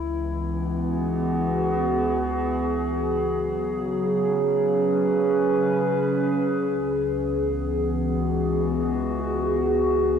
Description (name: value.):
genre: ambient.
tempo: free time.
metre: none.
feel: none.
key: unclear.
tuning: A4 = 445 Hz.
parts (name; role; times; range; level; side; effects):
warbly tape-like pad; solo; 0.0-10.2 s; C#2 to B4; -21 LUFS; equal; chorus, built-in reverb, tape echo.
room: wet plate reverb, RT60 3.4 s.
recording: echo-heavy mix.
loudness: -21 LUFS.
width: side -7 dB against mid.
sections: 0.0-6.7 A section; 6.7-10.2 B section.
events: none.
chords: 0.0 Eadd9/C#; 3.0 F#sus4/C#; 6.7 E/C#.